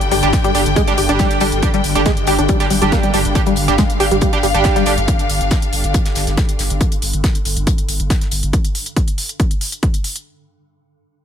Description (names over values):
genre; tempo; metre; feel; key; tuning
driving peak-time techno; 139 BPM; 4/4; straight; unclear; A4 = 440 Hz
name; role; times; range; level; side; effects
swarming drone; drone; 0.0-6.9 s; G2 to D3; -25 LUFS; equal; built-in reverb, sidechain pumping
damped 70s drum kit; drums; 0.0-8.4 s; hi-hat, snare drum; -29 LUFS; left 4 dB; high-pass filter on hats, high-pass filter on snare, high-pass filter on room
electronic hi-hat; drums; 0.0-10.2 s; none; -25 LUFS; equal; overdrive, sidechain pumping on hats
clear studio string section; texture; 0.0-6.8 s; D4 to G5; -23 LUFS; left 3 dB; sidechain pumping
tight sequenced synth; riff; 0.1-4.8 s; G3 to G4; -19 LUFS; left 2 dB; chorus, tube saturation, sidechain pumping, digital delay
saturated sub bass; bass; 0.1-8.5 s; G1; -21 LUFS; equal; sidechain pumping, low-pass filter
sync-sweep polysynth; stabs; 0.2-4.9 s; G3 to G4; -20 LUFS; right 5 dB; chorus, sidechain pumping, dub echo
electronic kick drum; drums; 0.3-9.9 s; none; -17 LUFS; equal; overdrive
room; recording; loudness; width
light reverb, studio reverb; none; -14 LUFS; side -9 dB against mid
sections
0.0-10.3 A section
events
drop 0.0-10.3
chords
0.0 G5